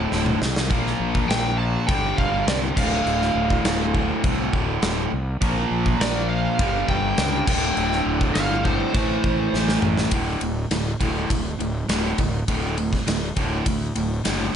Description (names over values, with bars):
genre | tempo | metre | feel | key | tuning
hard rock | 102 BPM | 4/4 | straight | D minor | A4 = 440 Hz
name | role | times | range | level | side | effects
lead guitar through a small cranked amp | melody | 0.0-9.8 s | C5 to A5 | -27 LUFS | right 2 dB | overdrive
cranked stack guitar | riff | 0.0-10.1 s | D2 to Bb3 | -29 LUFS | equal | overdrive, phaser
overdriven electric guitar | riff | 0.0-14.6 s | D2 to Bb3 | -28 LUFS | left 10 dB | none
overdriven electric guitar | riff | 0.0-14.5 s | D2 to Bb3 | -28 LUFS | right 10 dB | spring reverb
fuzz fingered electric bass | bass | 0.0-14.5 s | D1 to D2 | -27 LUFS | equal | overdrive
gated 80s drum kit | drums | 0.1-14.4 s | crash cymbal, kick drum, ride cymbal, snare drum, toms | -25 LUFS | equal | none
room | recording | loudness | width
light reverb | nothing above 10.7 kHz | -20 LUFS | side -8 dB against mid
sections
0.0-10.1 A section; 10.1-14.6 B section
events
drum fill 0.1-0.7, 9.5-10.1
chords
0.0 D5; 0.7 Bb5; 1.9 G5; 2.8 Dm; 5.4 Bb5; 6.6 G5; 7.5 D5; 8.9 Am; 10.1 D5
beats
0.12 | 0.71 1.30 1.88 2.47 | 3.06 3.65 4.24 4.83 | 5.42 6.00 6.59 7.18 | 7.77 8.36 8.95 9.54 | 10.12 10.71 11.30 11.89 | 12.48 13.07 13.66 14.25